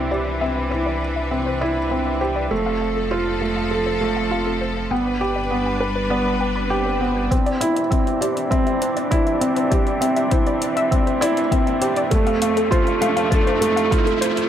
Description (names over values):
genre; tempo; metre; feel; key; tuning
piano and strings electronica; 100 BPM; 4/4; straight; C major; A4 = 440 Hz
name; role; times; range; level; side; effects
clear studio string section; sustained chords; 0.0-14.5 s; F2 to B4; -26 LUFS; left 1 dB; sidechain pumping, low-pass filter
felt-muted upright piano; riff; 0.0-14.5 s; A3 to B4; -21 LUFS; right 2 dB; digital delay
dark detuned saw bass; bass; 0.0-7.3 s; F1 to C2; -28 LUFS; equal; sidechain pumping
warbly dusty pluck; arpeggios; 0.1-14.3 s; A4 to G6; -28 LUFS; left 3 dB; chorus, sidechain pumping, digital delay
swell and riser; sound effects; 6.6-14.5 s; none; -30 LUFS; right 2 dB; none
electronic hi-hat; drums; 7.3-14.5 s; none; -31 LUFS; left 2 dB; none
electronic kick drum; drums; 7.3-14.0 s; none; -20 LUFS; equal; none
room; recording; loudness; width
light reverb, digital ambience; none; -18 LUFS; side -10 dB against mid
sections
0.0-7.3 A section; 7.3-14.5 B section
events
swell 6.6-7.3; build-up 7.3-14.5; riser 7.3-14.5; filter sweep on string section 7.3-14.5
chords
0.0 Cadd9; 2.5 F; 4.9 G; 7.3 Cadd9; 12.1 F